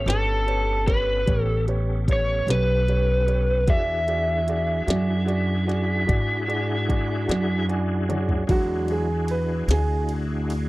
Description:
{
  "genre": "slow blues",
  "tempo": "50 BPM (dotted quarters)",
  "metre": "12/8",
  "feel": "straight",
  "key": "E mixolydian",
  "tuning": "A4 = 442 Hz",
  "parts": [
    { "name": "overdriven slide guitar", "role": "melody", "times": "0.0-7.7 s", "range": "A4 to E5", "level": "-25 LUFS", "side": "equal", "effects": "slapback echo" },
    { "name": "bright tonewheel organ", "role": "sustained chords", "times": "0.0-10.7 s", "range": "B3 to A4", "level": "-32 LUFS", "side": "left 1 dB", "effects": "slow rotary speaker, overdrive, chorus vibrato" },
    { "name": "upright bass", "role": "bass", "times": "0.0-10.7 s", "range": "G1 to G#2", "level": "-24 LUFS", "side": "equal", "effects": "none" },
    { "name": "clear grand piano", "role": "accompaniment", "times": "0.1-10.1 s", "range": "F#3 to G#5", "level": "-30 LUFS", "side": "right 2 dB", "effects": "none" },
    { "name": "glitchy drum kit", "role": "drums", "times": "0.1-10.7 s", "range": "hi-hat, kick drum, ride cymbal, snare drum, toms", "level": "-24 LUFS", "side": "equal", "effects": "none" }
  ],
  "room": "little or no reverb",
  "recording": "dry, close 1970s-style studio recording",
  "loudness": "-20 LUFS",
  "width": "side -19 dB against mid",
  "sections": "0.0-8.5 A section; 8.5-10.7 B section",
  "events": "grand piano fill 7.3-8.5; drum fill 8.1-8.5; grand piano solo 8.5-10.7",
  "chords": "0.0 A9; 3.7 E9",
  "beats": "0.07 1.28 2.48 | 3.68 4.88 6.08 7.28 | 8.48 9.69"
}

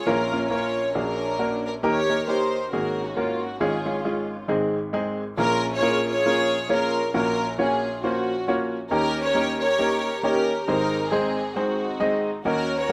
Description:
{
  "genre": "gospel",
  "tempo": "136 BPM",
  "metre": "4/4",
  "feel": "swing 58% on 8ths",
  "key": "unclear",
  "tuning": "A4 = 440 Hz",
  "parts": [
    { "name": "warm studio string section", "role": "melody", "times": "0.0-12.9 s", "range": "C4 to Db5", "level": "-27 LUFS", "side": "equal", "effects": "none" },
    { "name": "clear baby grand piano", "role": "accompaniment", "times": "0.0-12.9 s", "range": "Ab1 to Eb5", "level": "-27 LUFS", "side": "equal", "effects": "none" }
  ],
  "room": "wet studio reverb, RT60 0.6 s",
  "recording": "rough home demo mix",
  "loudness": "-24 LUFS",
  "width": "mono",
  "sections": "0.0-5.4 A section; 5.4-12.9 B section",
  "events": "none",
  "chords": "0.1 Bbm; 0.9 Bb7alt; 1.8 Eb; 2.7 Ab9sus4; 3.6 Db/Ab; 4.5 Ab; 5.4 Bbm7; 7.1 Gbmaj7/Bb; 8.9 Eb7; 10.7 Ab",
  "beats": "| 0.06 0.51 0.95 1.39 | 1.84 2.28 2.72 3.17 | 3.61 4.05 4.50 4.94 | 5.38 5.82 6.26 6.71 | 7.15 7.59 8.03 8.47 | 8.91 9.36 9.80 10.24 | 10.68 11.12 11.56 12.01 | 12.45 12.89"
}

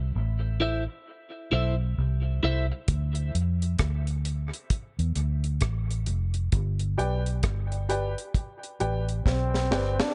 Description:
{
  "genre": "dub reggae",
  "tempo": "66 BPM",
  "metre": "4/4",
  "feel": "swing 62% on 16ths",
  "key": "unclear",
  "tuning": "A4 = 440 Hz",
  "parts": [
    { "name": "vintage muted fingered electric bass", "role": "bass", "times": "0.0-10.0 s", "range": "F1 to F2", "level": "-29 LUFS", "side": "equal", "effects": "none" },
    { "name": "clean electric guitar", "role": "accompaniment", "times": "0.6-2.8 s", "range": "E4 to E5", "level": "-34 LUFS", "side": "equal", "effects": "lush chorus, dub echo" },
    { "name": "deep reggae drum kit", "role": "drums", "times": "2.9-10.1 s", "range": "hi-hat, kick drum, rim click, snare drum", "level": "-30 LUFS", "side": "equal", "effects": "none" },
    { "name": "warm upright piano", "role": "stabs", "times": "7.0-9.9 s", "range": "G4 to G5", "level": "-35 LUFS", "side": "equal", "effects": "dub echo" },
    { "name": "breathy trombone", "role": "melody", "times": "9.3-10.1 s", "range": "C4 to D4", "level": "-32 LUFS", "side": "equal", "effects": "dub echo" }
  ],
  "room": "studio reverb",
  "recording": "nothing above 10.5 kHz",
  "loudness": "-28 LUFS",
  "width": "mono",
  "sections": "0.0-10.1 A section",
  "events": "break 0.0-6.5; drum fill 9.3-10.1",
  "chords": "0.0 Am; 2.9 Dm; 6.5 G",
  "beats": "0.15 1.06 1.97 | 2.88 3.79 4.71 5.62 | 6.53 7.43 8.34 9.25"
}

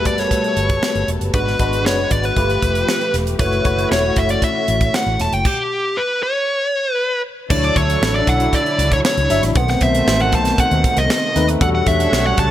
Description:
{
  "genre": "polished 1980s jazz-funk pop",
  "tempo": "117 BPM",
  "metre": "4/4",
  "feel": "straight",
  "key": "D major",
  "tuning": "A4 = 440 Hz",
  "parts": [
    { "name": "dark smooth lead guitar", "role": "melody", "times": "0.0-12.5 s", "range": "G4 to A5", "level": "-19 LUFS", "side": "equal", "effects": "overdrive" },
    { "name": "barky tine electric piano", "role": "accompaniment", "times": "0.0-12.5 s", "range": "D#3 to E5", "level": "-22 LUFS", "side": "left 3 dB", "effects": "ensemble chorus" },
    { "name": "warm studio string section", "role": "sustained chords", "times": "0.0-12.5 s", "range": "B2 to F#5", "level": "-27 LUFS", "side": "right 1 dB", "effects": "none" },
    { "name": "vintage muted fingered electric bass", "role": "bass", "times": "0.0-12.5 s", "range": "E1 to E2", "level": "-21 LUFS", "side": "equal", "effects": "none" },
    { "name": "crisp fusion drum kit", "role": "drums", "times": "0.1-12.5 s", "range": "crash cymbal, hi-hat, kick drum, snare drum", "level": "-21 LUFS", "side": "right 1 dB", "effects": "gated reverb" },
    { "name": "mellow horn section", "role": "second line", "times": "7.5-12.5 s", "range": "F#3 to C#5", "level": "-26 LUFS", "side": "right 5 dB", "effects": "none" }
  ],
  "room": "studio reverb",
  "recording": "none",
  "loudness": "-15 LUFS",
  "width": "side -12 dB against mid",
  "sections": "0.0-7.5 A section; 7.5-12.5 B section",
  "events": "stop 5.5-7.5",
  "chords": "0.0 Gmaj9; 1.3 G#m7b5; 2.4 G9; 3.4 F#m7; 5.5 N.C.; 7.5 Dmaj9; 9.6 B7b9; 11.6 Em11",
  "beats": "0.31 0.83 | 1.34 1.85 2.37 2.88 | 3.40 3.91 4.42 4.94 | 5.45 5.96 6.48 6.99 | 7.50 8.02 8.53 9.04 | 9.56 10.07 10.58 11.10 | 11.61 12.12"
}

